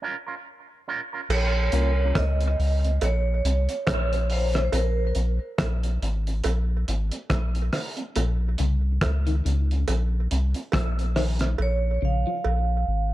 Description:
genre	dub reggae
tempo	70 BPM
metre	4/4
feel	swing 58% on 16ths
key	Bb minor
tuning	A4 = 442 Hz
part	electric guitar with an envelope filter	accompaniment	0.0-1.2 s	Db4 to Bb4	-32 LUFS	right 5 dB	tape echo
part	vibraphone with medium hard mallets	melody	1.3-5.1, 11.6-13.1 s	Bb4 to F5	-29 LUFS	right 3 dB	tape echo
part	soft dub sub bass	bass	1.3-13.1 s	Ab1 to Db2	-23 LUFS	equal	none
part	cloth-damped thuddy drum kit	drums	1.3-11.6 s	crash cymbal, hi-hat, kick drum, rim click	-28 LUFS	right 1 dB	none
part	cowbell	percussion	1.3-12.7 s	none	-35 LUFS	right 6 dB	tape echo
part	barky reed electric piano	stabs	1.7-1.9 s	Bb3 to Bb4	-32 LUFS	left 4 dB	overdrive, tape echo
part	electric guitar at the edge of break-up	arpeggios	8.2-12.4 s	Bb2 to F3	-34 LUFS	left 5 dB	wide subtle chorus, tape echo
room	little or no reverb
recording	dark, warm production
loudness	-22 LUFS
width	side -15 dB against mid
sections	0.0-1.3 A section; 1.3-13.1 B section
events	break 0.0-1.3; part muted 11.6-13.1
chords	0.0 Bbm; 4.7 Absus2; 8.2 Bbm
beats	0.45 | 1.31 2.16 3.02 3.88 | 4.73 5.59 6.45 7.30 | 8.16 9.02 9.88 10.73 | 11.59 12.45

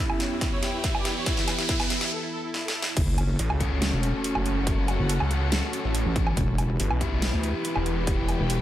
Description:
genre	heavy wobble dubstep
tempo	141 BPM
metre	4/4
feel	half-time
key	F# phrygian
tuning	A4 = 441 Hz
part	soft supersaw	melody	0.0-2.9 s	E4 to D5	-34 LUFS	equal	vintage 12-bit sampler grit, digital delay
part	evolving wavetable pad	sustained chords	0.1-8.6 s	E2 to B4	-34 LUFS	right 2 dB	chorus, built-in reverb, phaser, sidechain pumping
part	riser and sub drop	sound effects	0.0-4.7 s	none	-32 LUFS	equal	none
part	dark studio string section	texture	0.0-8.6 s	C#4 to G5	-35 LUFS	left 1 dB	sidechain pumping
part	dubstep drum kit	drums	0.1-8.6 s	crash cymbal, hi-hat, snare drum, woodblock	-30 LUFS	right 1 dB	high-pass filter on toms, high-pass filter on perc, high-pass filter on snare, high-pass filter on hats, high-pass filter on cymbals
part	electronic kick drum	drums	0.4-8.2 s	none	-28 LUFS	equal	none
part	wobble bass	bass	3.0-8.6 s	E1 to D2	-25 LUFS	equal	chorus, overdrive
part	snarling distorted saw bass	bass	3.4-8.4 s	E1 to C#2	-27 LUFS	equal	distortion, overdrive
part	thick fuzz guitar	stabs	3.6-8.6 s	B3 to A4	-33 LUFS	left 3 dB	distortion, digital delay
room	light reverb, digital ambience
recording	none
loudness	-23 LUFS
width	side -13 dB against mid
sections	0.0-3.0 A section; 3.0-8.6 B section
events	build-up 0.0-3.0; drum fill 0.0-2.1, 2.5-3.0; riser 0.0-2.1; filter sweep on ambient pad 0.0-3.0; filter sweep on supersaw synth 0.0-3.0; break 2.1-3.0; drop 3.0-8.6; impact 3.0-4.7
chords	0.0 Em; 3.0 F#m; 6.4 Em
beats	0.41 0.84 | 1.26 1.69 2.12 2.54 | 2.97 3.39 3.82 4.24 | 4.67 5.09 5.52 5.95 | 6.37 6.80 7.22 7.65 | 8.07 8.50

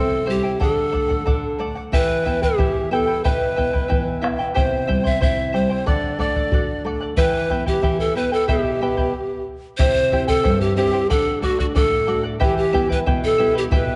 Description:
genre	andean folk, Andean ensemble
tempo	92 BPM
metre	2/4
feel	straight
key	E minor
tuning	A4 = 439 Hz
part	breathy reedy pan flute	melody	0.0-14.0 s	F#4 to E5	-23 LUFS	equal	none
part	charango	accompaniment	0.0-14.0 s	E4 to G5	-28 LUFS	equal	none
part	nylon-string guitar	accompaniment	0.0-14.0 s	G2 to G4	-28 LUFS	equal	none
part	bombo	percussion	0.6-13.9 s	none	-25 LUFS	equal	none
room	wet concert hall reverb, RT60 1.8 s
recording	nothing above 10.9 kHz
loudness	-20 LUFS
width	mono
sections	0.0-9.8 A section; 9.8-14.0 A section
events	stop 9.1-9.8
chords	0.0 C; 0.6 D; 1.9 Em; 4.6 C; 5.9 D; 7.2 Em; 9.8 C; 11.1 D; 12.4 Em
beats	| 0.61 1.27 | 1.93 2.58 | 3.24 3.90 | 4.55 5.21 | 5.86 6.52 | 7.17 7.83 | 8.48 9.14 | 9.79 10.45 | 11.10 11.76 | 12.41 13.07 | 13.72

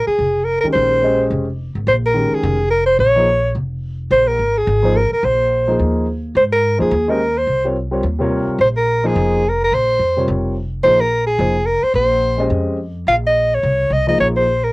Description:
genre	modal jazz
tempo	214 BPM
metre	4/4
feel	swing 59% on 8ths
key	Bb dorian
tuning	A4 = 439 Hz
part	breathy soprano saxophone	melody	0.0-14.7 s	Ab4 to F5	-15 LUFS	equal	cassette tape
part	upright bass	bass	0.0-14.7 s	F1 to Ab2	-21 LUFS	equal	none
part	warm grand piano	accompaniment	0.6-14.5 s	C3 to Eb5	-20 LUFS	equal	cassette tape
room	moderate booth ambience, RT60 0.2 s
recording	home recording on cassette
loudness	-14 LUFS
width	side -23 dB against mid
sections	0.0-14.7 A section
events	none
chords	0.0 Bbm9; 4.1 Abadd9; 8.6 Bbm9; 13.1 Abadd9/Bb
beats	0.19 0.47 | 0.75 1.03 1.31 1.59 | 1.87 2.15 2.43 2.71 | 2.99 3.27 3.55 3.83 | 4.11 4.39 4.67 4.95 | 5.23 5.51 5.79 6.07 | 6.35 6.63 6.91 7.19 | 7.47 7.75 8.03 8.31 | 8.59 8.87 9.15 9.43 | 9.71 9.99 10.27 10.55 | 10.83 11.11 11.39 11.67 | 11.95 12.23 12.51 12.79 | 13.07 13.35 13.63 13.91 | 14.19 14.47

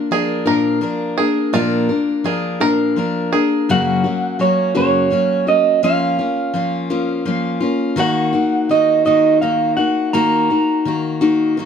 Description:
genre	acoustic folk duo or small band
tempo	56 BPM (dotted quarters)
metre	6/8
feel	straight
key	Eb minor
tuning	A4 = 440 Hz
part	picked steel-string acoustic guitar	accompaniment	0.0-11.7 s	Gb2 to Bb4	-17 LUFS	left 2 dB	none
part	bluegrass banjo	arpeggios	0.0-3.7 s	F4 to Bb4	-22 LUFS	right 5 dB	none
part	electric guitar through a small old amp	melody	3.7-11.5 s	Db5 to Bb5	-17 LUFS	right 4 dB	harmonic tremolo, slapback echo
room	little or no reverb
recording	close, detailed microphones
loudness	-14 LUFS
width	side -7 dB against mid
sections	0.0-3.7 A section; 3.7-11.7 B section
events	none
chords	0.0 Bb; 3.7 Gb; 5.8 Bbm/F; 8.0 Ebm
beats	0.47 | 1.54 2.61 | 3.69 4.76 | 5.83 6.91 | 7.98 9.06 | 10.13 11.21

